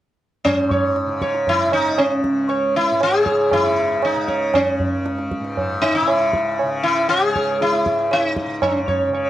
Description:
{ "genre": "indian classical, Hindustani", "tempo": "117 BPM", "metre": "4/4", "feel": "straight", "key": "unclear", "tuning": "A4 = 440 Hz", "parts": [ { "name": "sitar", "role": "melody", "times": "0.4-9.3 s", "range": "C#4 to C#5", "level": "-18 LUFS", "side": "equal", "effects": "plate reverb" }, { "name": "tanpura", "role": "drone", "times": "0.5-9.3 s", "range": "C#2 to C#3", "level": "-26 LUFS", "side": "left 2 dB", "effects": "none" }, { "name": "tabla", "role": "percussion", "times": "0.5-9.3 s", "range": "none", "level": "-23 LUFS", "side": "right 2 dB", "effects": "none" } ], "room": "moderate studio reverb, RT60 0.7 s", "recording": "worn, warbling old tape, cassette tape, warbly pitch drift", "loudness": "-16 LUFS", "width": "side -13 dB against mid", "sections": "0.4-9.3 A section", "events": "none", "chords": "none", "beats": "| 0.45 0.96 1.47 1.98 | 2.50 3.01 3.52 4.03 | 4.54 5.06 5.57 6.08 | 6.59 7.10 7.61 8.12 | 8.63 9.14" }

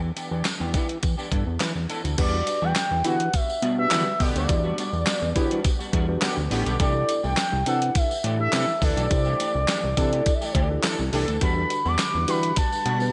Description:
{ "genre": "early-eighties boogie funk", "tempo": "104 BPM", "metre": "4/4", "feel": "straight", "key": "E minor", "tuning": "A4 = 443 Hz", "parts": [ { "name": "semi-hollow electric guitar", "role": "riff", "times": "0.0-13.1 s", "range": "E3 to A4", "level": "-36 LUFS", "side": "equal", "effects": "ensemble chorus, slapback echo" }, { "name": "fat analog bass", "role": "bass", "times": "0.0-13.1 s", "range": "A1 to E3", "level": "-28 LUFS", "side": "equal", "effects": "none" }, { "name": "clean 12-bit digital drum machine", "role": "drums", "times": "0.2-13.0 s", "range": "crash cymbal, handclaps, hi-hat, kick drum, snare drum", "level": "-28 LUFS", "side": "equal", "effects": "none" }, { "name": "tambourine", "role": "percussion", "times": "0.2-13.1 s", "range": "none", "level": "-40 LUFS", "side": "equal", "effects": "none" }, { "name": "expressive synth lead", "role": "melody", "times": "2.2-13.1 s", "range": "C5 to D6", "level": "-28 LUFS", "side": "equal", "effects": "chorus, slapback echo" }, { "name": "mellow tine electric piano", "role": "accompaniment", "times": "2.2-13.1 s", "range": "D4 to D5", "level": "-35 LUFS", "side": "equal", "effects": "slapback echo" }, { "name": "analog synth brass", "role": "second line", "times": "3.0-12.4 s", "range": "D3 to B4", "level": "-35 LUFS", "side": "equal", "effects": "chorus, slapback echo, tape echo" }, { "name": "string machine, full ensemble", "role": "sustained chords", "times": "11.4-13.1 s", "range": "D3 to F#5", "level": "-38 LUFS", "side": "equal", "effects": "none" } ], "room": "moderate lush hall reverb, RT60 2.4 s", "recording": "big arena sound, nothing above 10.7 kHz", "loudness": "-24 LUFS", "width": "mono", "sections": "0.0-2.2 A section; 2.2-13.1 B section", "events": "none", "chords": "0.0 Em7; 2.2 Em9; 6.8 C69; 11.4 Em9", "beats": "0.45 1.03 1.61 | 2.18 2.76 3.34 3.91 | 4.49 5.07 5.64 6.22 | 6.80 7.38 7.95 8.53 | 9.11 9.68 10.26 10.84 | 11.41 11.99 12.57" }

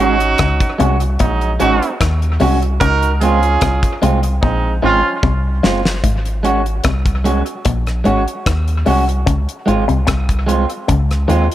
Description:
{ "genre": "roots reggae", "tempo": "74 BPM", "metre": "4/4", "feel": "straight", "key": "Ab mixolydian", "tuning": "A4 = 442 Hz", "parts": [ { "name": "clear horn section", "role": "second line", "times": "0.0-5.2 s", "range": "F3 to Bb4", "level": "-18 LUFS", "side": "right 4 dB", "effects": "analog delay" }, { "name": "electric guitar at the edge of break-up", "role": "accompaniment", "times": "0.0-11.5 s", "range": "Ab3 to Gb4", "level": "-19 LUFS", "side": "right 3 dB", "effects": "lush chorus, analog delay" }, { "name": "soft dub sub bass", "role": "bass", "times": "0.0-11.5 s", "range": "Gb1 to Eb2", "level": "-17 LUFS", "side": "equal", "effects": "none" }, { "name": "damped 70s drum kit", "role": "drums", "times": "0.2-11.5 s", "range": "hi-hat, kick drum, rim click, snare drum", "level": "-19 LUFS", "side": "equal", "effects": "analog delay" }, { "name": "electric guitar with an envelope filter", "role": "riff", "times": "0.4-11.4 s", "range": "Gb2 to Eb3", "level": "-20 LUFS", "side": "left 5 dB", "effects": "none" } ], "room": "light reverb", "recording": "none", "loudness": "-13 LUFS", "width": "side -13 dB against mid", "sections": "0.0-6.0 A section; 6.0-11.5 B section", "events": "drum fill 4.4-6.0", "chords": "0.0 Ab7sus4; 2.8 Dbmaj7; 6.0 Ab7sus4; 9.3 Dbmaj7", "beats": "0.39 1.20 2.00 | 2.81 3.62 4.42 5.23 | 6.04 6.84 7.65 8.46 | 9.27 10.07 10.88" }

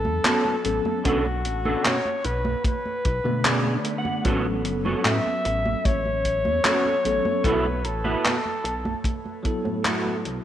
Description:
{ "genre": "vaporwave", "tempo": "75 BPM", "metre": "4/4", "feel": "straight", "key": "unclear", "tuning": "A4 = 438 Hz", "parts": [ { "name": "breathy flugelhorn", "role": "melody", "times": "0.0-9.5 s", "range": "F#4 to E5", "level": "-27 LUFS", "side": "left 1 dB", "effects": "tape echo" }, { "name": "bell-like tine electric piano", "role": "accompaniment", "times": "0.0-10.4 s", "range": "D3 to A4", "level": "-30 LUFS", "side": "left 1 dB", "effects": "fast stereo tremolo, wide subtle chorus" }, { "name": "chorused synth bass", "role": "bass", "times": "0.0-10.4 s", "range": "F#1 to B2", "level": "-28 LUFS", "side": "equal", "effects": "none" }, { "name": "gated 80s digital drum machine", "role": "drums", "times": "0.0-10.4 s", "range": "congas, handclaps, hi-hat", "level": "-27 LUFS", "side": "right 1 dB", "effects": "gated reverb" }, { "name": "clean electric guitar", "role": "riff", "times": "0.2-10.2 s", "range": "B3 to F#5", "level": "-28 LUFS", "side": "right 2 dB", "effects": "ensemble chorus" }, { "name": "kick drum", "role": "drums", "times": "1.1-9.6 s", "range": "none", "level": "-25 LUFS", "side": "equal", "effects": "none" } ], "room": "moderate lush hall reverb, RT60 2.4 s", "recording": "rough home demo mix, cassette tape", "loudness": "-21 LUFS", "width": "side -11 dB against mid", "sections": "0.0-10.4 A section", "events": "clean electric guitar fill 3.0-4.2; fade-out 8.5-10.4", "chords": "0.0 A69; 1.1 Bm9; 4.2 A69; 7.5 B7sus4", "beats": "0.25 | 1.05 1.85 2.65 3.45 | 4.25 5.05 5.85 6.65 | 7.45 8.25 9.05 9.85" }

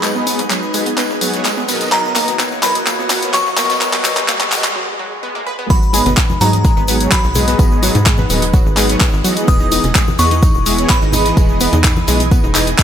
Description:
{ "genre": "progressive house", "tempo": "127 BPM", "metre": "4/4", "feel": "straight", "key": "G# minor", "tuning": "A4 = 440 Hz", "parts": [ { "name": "glassy synth bell", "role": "melody", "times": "0.0-12.8 s", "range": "A#5 to D#6", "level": "-21 LUFS", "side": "left 1 dB", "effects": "chorus, ping-pong delay" }, { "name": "evolving wavetable pad", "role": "sustained chords", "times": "0.0-12.8 s", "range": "E3 to G#5", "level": "-25 LUFS", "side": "right 1 dB", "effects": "phaser, built-in reverb, sidechain pumping" }, { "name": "wide unison pluck", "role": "arpeggios", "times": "0.0-12.8 s", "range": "F#3 to D#5", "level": "-22 LUFS", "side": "right 1 dB", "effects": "sidechain pumping, ping-pong delay" }, { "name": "soft supersaw", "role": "stabs", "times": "0.0-12.7 s", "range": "G#2 to F#5", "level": "-21 LUFS", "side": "equal", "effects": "sidechain pumping, ping-pong delay" }, { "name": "tight sequencer bass", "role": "bass", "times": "0.0-12.7 s", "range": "D#1 to G#2", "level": "-18 LUFS", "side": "equal", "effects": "sidechain pumping, high-pass filter" }, { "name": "deep house drum kit", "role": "drums", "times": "0.0-12.8 s", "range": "handclaps, hi-hat, toms", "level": "-18 LUFS", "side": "left 1 dB", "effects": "high-pass filter on hats, high-pass filter on snare, high-pass filter on toms, high-pass filter on room" }, { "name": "unplugged drum kit", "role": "drums", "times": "0.0-12.8 s", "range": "hi-hat, snare drum, tambourine", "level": "-28 LUFS", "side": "right 1 dB", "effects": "none" }, { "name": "egg shaker", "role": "percussion", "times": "0.0-12.8 s", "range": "none", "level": "-28 LUFS", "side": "left 4 dB", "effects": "none" }, { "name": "riser and swell", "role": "sound effects", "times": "0.4-5.7 s", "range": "none", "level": "-29 LUFS", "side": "equal", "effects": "none" }, { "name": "electronic kick drum", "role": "drums", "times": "5.7-12.8 s", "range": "none", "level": "-13 LUFS", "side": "equal", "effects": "none" }, { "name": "bongos and congas", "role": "percussion", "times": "5.9-12.3 s", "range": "none", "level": "-24 LUFS", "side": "left 2 dB", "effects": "sidechain pumping on perc" } ], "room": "light reverb, small room reverb", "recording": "high-pass filter", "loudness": "-12 LUFS", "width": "side -9 dB against mid", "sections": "0.0-5.7 A section; 5.7-12.8 B section", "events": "build-up 0.0-5.7; drum fill 0.0-4.8, 5.3-5.7; filter sweep on synth pluck 0.0-5.7; riser 0.4-4.8; break 4.8-5.7; swell 4.8-5.7; drop 5.7-12.8", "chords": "0.0 G#m7; 1.9 Bmaj7; 5.7 G#m7; 9.5 Emaj7", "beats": "| 0.03 0.51 0.98 1.45 | 1.92 2.39 2.87 3.34 | 3.81 4.28 4.76 5.23 | 5.70 6.17 6.65 7.12 | 7.59 8.06 8.54 9.01 | 9.48 9.95 10.43 10.90 | 11.37 11.84 12.32 12.79" }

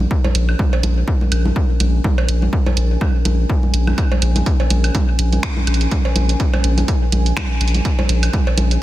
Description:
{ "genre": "minimal techno", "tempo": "124 BPM", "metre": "4/4", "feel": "swing 56% on 16ths", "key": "Bb minor", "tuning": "A4 = 441 Hz", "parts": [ { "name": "saturated sub bass", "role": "bass", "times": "0.0-8.8 s", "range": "Bb1", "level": "-16 LUFS", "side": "equal", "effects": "sidechain pumping" }, { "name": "congas, cowbell and woodblock", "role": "percussion", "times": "0.0-8.7 s", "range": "none", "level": "-24 LUFS", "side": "right 2 dB", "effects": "studio reverb, ping-pong delay" }, { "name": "deep dark ambient pad", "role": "texture", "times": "0.0-8.8 s", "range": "Db4 to Ab5", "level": "-28 LUFS", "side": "left 1 dB", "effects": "chorus, built-in reverb, sidechain pumping" }, { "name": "electronic kick drum", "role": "drums", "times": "0.1-8.4 s", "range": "none", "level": "-18 LUFS", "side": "equal", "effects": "studio reverb" }, { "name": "punchy analog drum machine", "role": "drums", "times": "0.3-8.8 s", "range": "finger snaps, hi-hat", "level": "-26 LUFS", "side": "right 4 dB", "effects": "studio reverb" } ], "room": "digital ambience", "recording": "none", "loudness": "-14 LUFS", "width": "side -15 dB against mid", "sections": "0.0-8.8 A section", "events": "fade-in on ambient pad 0.0-8.8", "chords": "0.0 Bbm7", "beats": "| 0.11 0.59 1.08 1.56 | 2.04 2.53 3.01 3.50 | 3.98 4.46 4.95 5.43 | 5.91 6.40 6.88 7.37 | 7.85 8.33 8.82" }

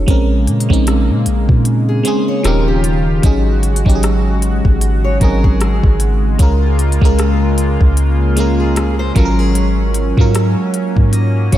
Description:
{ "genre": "contemporary R&B", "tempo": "76 BPM", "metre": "4/4", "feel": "swing 58% on 16ths", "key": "unclear", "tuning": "A4 = 440 Hz", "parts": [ { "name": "FM electric piano", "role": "accompaniment", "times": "0.0-11.6 s", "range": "F3 to Bb4", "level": "-18 LUFS", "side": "right 1 dB", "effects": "chorus, phaser" }, { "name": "fingerpicked steel-string acoustic guitar", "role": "arpeggios", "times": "0.0-11.6 s", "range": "G4 to Eb5", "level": "-25 LUFS", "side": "equal", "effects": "diffuse ambient delay" }, { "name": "soft 808-style bass", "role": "bass", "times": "0.0-11.6 s", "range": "Eb1 to Bb2", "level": "-14 LUFS", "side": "equal", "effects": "none" }, { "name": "chorused pulse-width pad", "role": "sustained chords", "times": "0.1-11.6 s", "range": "Db3 to G4", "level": "-20 LUFS", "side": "left 1 dB", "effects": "sidechain pumping" }, { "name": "smooth R&B drum kit", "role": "drums", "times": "0.1-11.6 s", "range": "hi-hat, kick drum, rim click", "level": "-15 LUFS", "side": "equal", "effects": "overdrive" } ], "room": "light reverb", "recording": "none", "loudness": "-11 LUFS", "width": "side -13 dB against mid", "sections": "0.0-11.6 A section", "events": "none", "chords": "0.1 Bbm9; 2.4 Eb9; 3.2 Ab7sus4; 6.4 Db6; 9.2 Ab13sus4", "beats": "| 0.08 0.87 1.66 2.45 | 3.24 4.03 4.82 5.61 | 6.39 7.18 7.97 8.76 | 9.55 10.34 11.13" }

